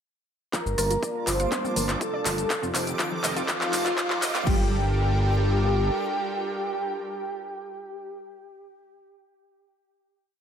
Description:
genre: progressive house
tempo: 122 BPM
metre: 4/4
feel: straight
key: G minor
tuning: A4 = 442 Hz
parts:
  - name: expressive portamento lead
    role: melody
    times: 0.5-8.2 s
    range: F4 to C5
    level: -31 LUFS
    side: right 1 dB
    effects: analog chorus, digital delay
  - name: airy dreamy lead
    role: second line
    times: 0.5-8.2 s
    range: F4 to C5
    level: -33 LUFS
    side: left 1 dB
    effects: chorus, sidechain pumping, tape echo
  - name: supersaw pad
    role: sustained chords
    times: 0.5-8.2 s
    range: F3 to A5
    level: -33 LUFS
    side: right 1 dB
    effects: vintage 12-bit sampler grit, sidechain pumping, low-pass filter
  - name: wide unison pluck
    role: arpeggios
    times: 0.5-4.7 s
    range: F4 to F5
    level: -33 LUFS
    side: left 1 dB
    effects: sidechain pumping, tape echo
  - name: electronic kick drum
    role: drums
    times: 0.5-4.6 s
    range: none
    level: -28 LUFS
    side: equal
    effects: overdrive, high-pass filter on kick, high-pass filter on room
  - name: house drum kit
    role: drums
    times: 0.5-4.6 s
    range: crash cymbal, handclaps, hi-hat, rim click, shaker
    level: -28 LUFS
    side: left 1 dB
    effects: overdrive
  - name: riser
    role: sound effects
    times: 2.1-4.5 s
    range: none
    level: -36 LUFS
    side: right 2 dB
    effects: none
  - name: backwards swelling texture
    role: texture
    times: 1.3-4.5 s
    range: D6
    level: -40 LUFS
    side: right 2 dB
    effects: built-in reverb, sidechain pumping
  - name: fat analog bass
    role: bass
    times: 0.7-5.9 s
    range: F1 to G1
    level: -26 LUFS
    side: equal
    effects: sidechain pumping
  - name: congas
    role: percussion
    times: 1.5-4.4 s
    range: none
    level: -36 LUFS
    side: left 5 dB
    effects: overdrive, sidechain pumping on perc
room: moderate digital room reverb, RT60 1.1 s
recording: high-pass filter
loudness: -23 LUFS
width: side -8 dB against mid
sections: 0.5-4.5 build; 4.5-8.4 final chord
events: build-up 0.5-4.5; drum fill 0.5-4.5; filter sweep on synth pluck 0.5-4.5; filter sweep on supersaw synth 0.5-4.5; filter sweep on analog synth lead 0.5-4.5; filter sweep on digital synth lead 0.5-4.5; riser 2.1-4.5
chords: 0.5 Gm7; 2.5 F7; 4.5 Gm7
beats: | 0.53 1.02 1.52 2.01 | 2.50 2.99 3.48 3.98 | 4.47 4.96 5.45 5.94 | 6.43 6.93 7.42 7.91

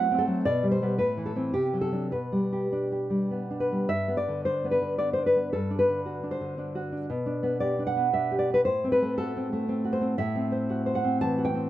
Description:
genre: romantic piece for solo classical guitar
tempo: 97-120 BPM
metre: 3/4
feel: rubato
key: G major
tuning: A4 = 440 Hz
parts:
  - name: nylon-string guitar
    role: solo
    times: 0.0-11.7 s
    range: G2 to A5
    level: -24 LUFS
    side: equal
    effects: none
room: light reverb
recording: dark, warm production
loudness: -25 LUFS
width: side -13 dB against mid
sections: 0.0-3.9 A section; 3.9-11.7 A section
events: none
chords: 0.5 G/B; 1.0 Am; 1.5 D7/C; 2.1 G/B; 3.9 G; 5.5 D7/G; 7.1 G/B; 8.7 F#dim/A; 10.2 F#m7b5/A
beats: | 0.45 0.99 1.54 | 2.13 2.73 3.32 | 3.90 4.46 5.00 | 5.54 6.06 6.58 | 7.09 7.61 8.14 | 8.66 9.18 9.69 | 10.20 10.70 11.21

